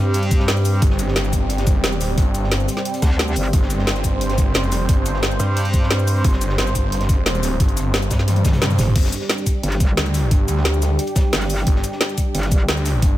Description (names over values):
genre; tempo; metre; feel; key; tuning
dark technical drum and bass; 177 BPM; 4/4; straight; unclear; A4 = 440 Hz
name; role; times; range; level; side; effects
dark analog pad; sustained chords; 0.0-13.2 s; G3 to C5; -25 LUFS; right 1 dB; chorus, sidechain pumping
metallic wobble bass; bass; 0.0-0.8, 3.0-6.2, 9.6-12.7 s; G1 to G2; -19 LUFS; equal; chorus, tube saturation
crunchy breakbeat drum kit; drums; 0.1-13.1 s; hi-hat, snare drum; -34 LUFS; equal; none
drum and bass drum kit; drums; 0.1-13.1 s; cabasa, crash cymbal, hi-hat, snare drum, toms; -23 LUFS; equal; overdrive
electronic kick drum; drums; 0.3-13.1 s; none; -17 LUFS; equal; overdrive
snarling distorted saw bass; bass; 0.8-13.2 s; G1 to G2; -20 LUFS; equal; distortion, tube saturation, sidechain pumping
room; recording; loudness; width
little or no reverb; none; -16 LUFS; side -14 dB against mid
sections
0.0-9.0 A section; 9.0-13.2 A section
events
drop 0.0-9.0, 9.0-13.2; drum fill 8.3-9.0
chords
0.0 G5